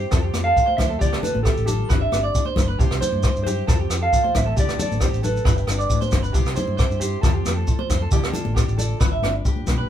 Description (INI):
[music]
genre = highlife guitar band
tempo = 135 BPM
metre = 4/4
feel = straight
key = unclear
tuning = A4 = 440 Hz
[part]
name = mellow electric guitar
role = melody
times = 0.0-6.1 s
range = G4 to F5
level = -24 LUFS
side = right 2 dB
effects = none
[part]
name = fingerpicked steel-string acoustic guitar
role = accompaniment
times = 0.0-9.9 s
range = G2 to D5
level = -31 LUFS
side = left 4 dB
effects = none
[part]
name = electric guitar through a small old amp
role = arpeggios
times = 0.0-9.9 s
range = G4 to E5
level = -28 LUFS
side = right 4 dB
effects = none
[part]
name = fingered electric bass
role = bass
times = 0.0-9.8 s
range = G1 to G2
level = -25 LUFS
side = equal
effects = none
[part]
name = jazz brush drum kit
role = drums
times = 0.1-9.8 s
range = hi-hat, kick drum, rim click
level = -22 LUFS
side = equal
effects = none
[part]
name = shekere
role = percussion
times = 0.1-9.8 s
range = none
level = -30 LUFS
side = right 1 dB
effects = none
[part]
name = congas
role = percussion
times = 0.3-9.8 s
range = none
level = -30 LUFS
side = left 2 dB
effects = none
[sound]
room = moderate studio ambience, RT60 0.5 s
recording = band playing live in one room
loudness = -18 LUFS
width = side -10 dB against mid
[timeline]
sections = 0.0-9.9 A section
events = none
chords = 0.1 Fadd9; 1.0 Dm; 1.9 G; 2.8 C; 3.7 Fadd9; 4.6 D5; 5.5 G; 6.3 C; 7.2 Fadd9; 8.1 Dm; 9.0 G